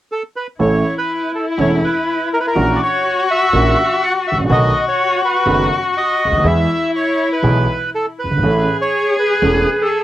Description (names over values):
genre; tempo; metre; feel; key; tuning
tango; 122 BPM; 4/4; rubato; A major; A4 = 440 Hz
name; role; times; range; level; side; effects
bandoneon; melody; 0.1-10.0 s; A4 to F#5; -18 LUFS; right 1 dB; cassette tape
warm cello; second line; 0.6-10.0 s; E4 to G#4; -18 LUFS; left 3 dB; cassette tape, tape echo
warm grand piano; accompaniment; 0.6-9.6 s; E1 to A4; -17 LUFS; right 2 dB; cassette tape
upright bass; bass; 0.6-9.6 s; E1 to E2; -20 LUFS; equal; none
room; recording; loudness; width
moderate booth ambience, RT60 0.2 s; home recording on cassette; -13 LUFS; side -13 dB against mid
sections
0.6-10.0 A section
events
none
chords
0.0 N.C.; 0.6 A; 2.6 F#7/A#; 4.5 B7; 6.4 E; 8.4 A